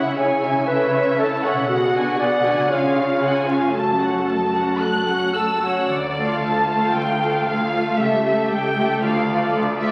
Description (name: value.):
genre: classical, dramatic, fast romantic movement for symphony orchestra.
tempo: 115 BPM.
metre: 4/4.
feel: rubato.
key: F# minor, D minor from 5.9 s.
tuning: A4 = 439 Hz.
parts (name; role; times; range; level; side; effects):
dark symphonic violin section; melody; 0.0-9.9 s; C#5 to A5; -27 LUFS; equal; none.
mellow clarinet; second line; 0.0-5.3 s; E4 to D5; -24 LUFS; equal; none.
warm symphonic violin section; second line; 0.0-9.9 s; A4 to F#6; -27 LUFS; equal; none.
warm symphonic viola section; accompaniment; 0.0-9.9 s; A3 to C#5; -27 LUFS; equal; none.
concert harp; arpeggios; 0.0-9.9 s; F#2 to D5; -34 LUFS; equal; none.
rich symphonic cello section; bass; 0.0-9.9 s; C#2 to C#3; -29 LUFS; equal; none.
warm symphonic double bass section; bass; 5.9-9.9 s; C#2 to D2; -39 LUFS; equal; none.
room: wet recital hall reverb, RT60 1.6 s.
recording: very old 78 rpm record, vinyl crackle.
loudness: -20 LUFS.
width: mono.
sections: 0.0-5.9 A section; 5.9-9.9 B section.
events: none.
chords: 0.0 C#m; 0.7 A/C#; 1.7 G#m7b5/B; 2.7 C#; 3.7 F#m; 5.9 Dm; 8.0 A7/C#; 9.0 Dm.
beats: 0.19 0.69 1.19 | 1.69 2.20 2.70 3.22 | 3.74 4.27 4.81 5.34 | 5.88 6.41 6.93 7.46 | 7.98 8.50 9.02 9.53.